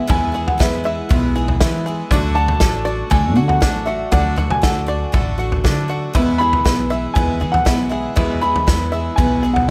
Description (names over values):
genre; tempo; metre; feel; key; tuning
indie folk with a building arrangement; 119 BPM; 4/4; straight; E major; A4 = 440 Hz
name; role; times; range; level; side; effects
dark upright piano; melody; 0.0-9.7 s; E5 to B5; -23 LUFS; equal; digital delay
picked twelve-string acoustic guitar; accompaniment; 0.0-9.7 s; E2 to F#4; -29 LUFS; equal; none
warm upright piano; accompaniment; 0.0-9.7 s; D2 to F#5; -32 LUFS; equal; none
bluegrass banjo; arpeggios; 0.0-9.7 s; D4 to E5; -28 LUFS; equal; none
upright bass; bass; 0.1-9.7 s; A1 to E3; -23 LUFS; equal; none
natural country drum kit; drums; 0.1-9.7 s; kick drum, snare drum, toms; -21 LUFS; equal; none
room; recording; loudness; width
light reverb; none; -17 LUFS; mono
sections
0.0-9.7 A section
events
none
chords
0.0 E; 2.1 D; 6.1 E